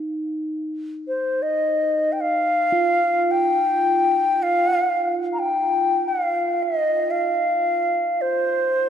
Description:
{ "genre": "world meditative, free-time meditation music", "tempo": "free time", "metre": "none", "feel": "none", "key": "unclear", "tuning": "A4 = 439 Hz", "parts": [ { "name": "quartz singing bowl", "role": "texture", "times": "0.0-8.9 s", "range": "Eb4 to F4", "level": "-28 LUFS", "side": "right 3 dB", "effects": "none" }, { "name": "mellow xiao", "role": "melody", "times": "1.1-8.9 s", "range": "C5 to Bb5", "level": "-19 LUFS", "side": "left 1 dB", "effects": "analog delay" } ], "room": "wet plate reverb, RT60 3.3 s", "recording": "none", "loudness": "-19 LUFS", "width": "side -9 dB against mid", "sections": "0.0-8.9 A section", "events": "none", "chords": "none" }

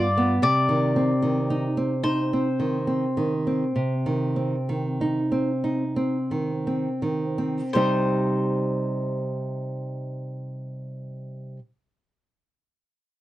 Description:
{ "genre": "romantic duo for mandolin and classical guitar", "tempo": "27-40 BPM (dotted quarters)", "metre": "12/8", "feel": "rubato", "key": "C minor", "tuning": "A4 = 440 Hz", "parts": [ { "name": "mandolin", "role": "melody", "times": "0.0-11.6 s", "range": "C5 to D5", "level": "-27 LUFS", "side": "left 3 dB", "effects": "none" }, { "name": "nylon-string guitar", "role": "accompaniment", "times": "0.0-11.6 s", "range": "G2 to Eb5", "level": "-23 LUFS", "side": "right 1 dB", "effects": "none" } ], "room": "little or no reverb", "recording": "dry, close 1970s-style studio recording", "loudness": "-22 LUFS", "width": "side -15 dB against mid", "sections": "0.0-7.7 A section; 7.7-13.2 B section", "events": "slowing down 0.0-7.7", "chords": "0.4 Cm" }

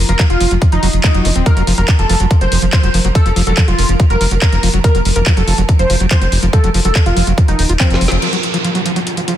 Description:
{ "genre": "psychedelic trance", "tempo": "142 BPM", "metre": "4/4", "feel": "straight", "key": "F major", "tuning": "A4 = 440 Hz", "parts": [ { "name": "pulsing gated texture", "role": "sustained chords", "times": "0.0-9.4 s", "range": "F3 to Bb4", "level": "-22 LUFS", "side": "right 4 dB", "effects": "chorus, built-in reverb, sidechain pumping" }, { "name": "round analog bass", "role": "bass", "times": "0.0-8.2 s", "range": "Eb1 to F1", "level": "-14 LUFS", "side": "equal", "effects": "none" }, { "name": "wide unison lead", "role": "melody", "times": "0.1-8.0 s", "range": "C4 to C5", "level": "-19 LUFS", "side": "equal", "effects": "phaser, sidechain pumping, digital delay" }, { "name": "screaming distorted acid line", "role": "riff", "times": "0.1-9.3 s", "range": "F3 to F4", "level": "-21 LUFS", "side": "moving between left 5 dB and right 6 dB", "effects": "distortion, chorus, auto-pan, vintage 12-bit sampler grit, sidechain pumping, digital delay" }, { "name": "drum and bass drum kit", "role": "drums", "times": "0.1-9.4 s", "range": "crash cymbal, handclaps, hi-hat, snare drum", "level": "-20 LUFS", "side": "equal", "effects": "none" }, { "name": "electronic kick drum", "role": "drums", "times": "0.2-7.9 s", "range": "none", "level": "-11 LUFS", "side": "equal", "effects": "none" }, { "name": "downlifter", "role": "sound effects", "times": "8.2-9.4 s", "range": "none", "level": "-21 LUFS", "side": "right 1 dB", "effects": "none" } ], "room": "light reverb", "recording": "dense, heavily limited modern master", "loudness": "-10 LUFS", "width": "side -11 dB against mid", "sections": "0.0-8.2 A section; 8.2-9.4 B section", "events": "drum fill 7.8-8.2; band accent 8.1; filter sweep on synth texture 8.2-9.4", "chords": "0.0 F5" }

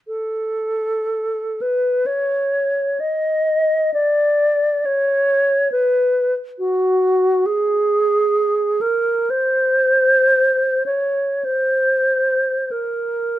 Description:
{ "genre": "classical, free, expressive piece for unaccompanied alto flute", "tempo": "free time", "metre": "none", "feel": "none", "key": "unclear", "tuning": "A4 = 441 Hz", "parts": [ { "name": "alto flute", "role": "solo", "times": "0.1-13.4 s", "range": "F#4 to D#5", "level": "-16 LUFS", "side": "equal", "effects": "none" } ], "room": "light reverb", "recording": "none", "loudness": "-16 LUFS", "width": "side -14 dB against mid", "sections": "0.1-13.4 A section", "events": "none", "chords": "none" }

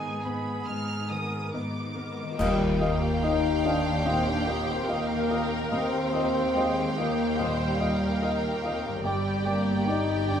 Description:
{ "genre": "cinematic, emotional film score for orchestra", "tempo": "72 BPM", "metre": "4/4", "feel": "rubato", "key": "Eb major", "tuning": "A4 = 440 Hz", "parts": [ { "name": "rich studio violin section", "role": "melody", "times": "0.0-10.4 s", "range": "G5 to F6", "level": "-36 LUFS", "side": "equal", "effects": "none" }, { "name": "mellow cor anglais", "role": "second line", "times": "0.0-10.4 s", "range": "Ab4 to Eb5", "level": "-36 LUFS", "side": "equal", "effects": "none" }, { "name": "warm studio violin section", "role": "second line", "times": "0.0-10.4 s", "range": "Cb4 to F5", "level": "-37 LUFS", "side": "right 2 dB", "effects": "none" }, { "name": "felt-muted upright piano", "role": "accompaniment", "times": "0.0-10.4 s", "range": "Eb2 to Eb5", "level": "-34 LUFS", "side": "left 1 dB", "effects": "none" }, { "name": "rich studio viola section", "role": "accompaniment", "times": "0.0-10.4 s", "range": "Ab3 to C5", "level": "-36 LUFS", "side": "left 1 dB", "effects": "none" }, { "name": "rich studio cello section", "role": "bass", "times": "0.0-10.4 s", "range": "Eb2 to Ab2", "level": "-34 LUFS", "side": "equal", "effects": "none" }, { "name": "concert harp", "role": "arpeggios", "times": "2.2-10.4 s", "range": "G2 to C5", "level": "-34 LUFS", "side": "left 5 dB", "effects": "none" }, { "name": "concert flute", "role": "second line", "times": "2.4-10.4 s", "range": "F5 to G5", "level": "-38 LUFS", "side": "left 2 dB", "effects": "none" }, { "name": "warm French horn section", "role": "sustained chords", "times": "2.4-10.4 s", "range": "G3 to Eb4", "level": "-28 LUFS", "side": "left 2 dB", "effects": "none" }, { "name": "rich studio double bass section", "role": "bass", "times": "2.4-10.4 s", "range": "G1 to Eb2", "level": "-33 LUFS", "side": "right 1 dB", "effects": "none" }, { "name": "clash cymbals and concert bass drum", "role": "percussion", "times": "2.4-4.0 s", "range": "none", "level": "-35 LUFS", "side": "right 1 dB", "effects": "none" } ], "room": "wet stone room reverb, RT60 1.1 s", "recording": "none", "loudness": "-24 LUFS", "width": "side -8 dB against mid", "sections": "0.0-2.4 A section; 2.4-10.4 A section", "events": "band accent 2.4-3.2", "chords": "0.0 Abmadd9; 2.4 Ebadd9; 9.0 Gsus4" }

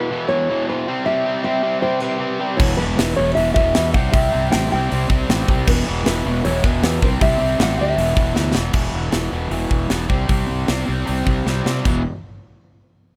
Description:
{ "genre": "hard rock", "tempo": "156 BPM", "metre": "4/4", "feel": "straight", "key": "unclear", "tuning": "A4 = 435 Hz", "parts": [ { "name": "nylon-string guitar", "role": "melody", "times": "0.0-8.3 s", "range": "B4 to G5", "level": "-24 LUFS", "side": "equal", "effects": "none" }, { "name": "overdriven semi-hollow guitar", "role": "riff", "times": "0.0-12.0 s", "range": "E2 to C4", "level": "-25 LUFS", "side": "equal", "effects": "none" }, { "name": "fuzz fingered electric bass", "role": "bass", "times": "2.6-12.0 s", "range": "E1 to C3", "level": "-24 LUFS", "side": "equal", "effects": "overdrive" }, { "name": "tight metal drum kit", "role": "drums", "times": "2.6-11.9 s", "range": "crash cymbal, hi-hat, kick drum, snare drum, splash cymbal", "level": "-23 LUFS", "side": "equal", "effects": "none" } ], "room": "light reverb", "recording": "none", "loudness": "-19 LUFS", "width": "mono", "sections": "0.0-8.8 A section; 8.8-11.9 B section; 11.9-13.2 C section", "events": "drum fill 8.4-8.8, 11.5-11.9", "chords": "0.0 E5; 0.9 C; 2.6 E5; 3.9 C; 5.7 E5; 7.0 C; 8.0 E5; 10.1 C5; 11.9 E5" }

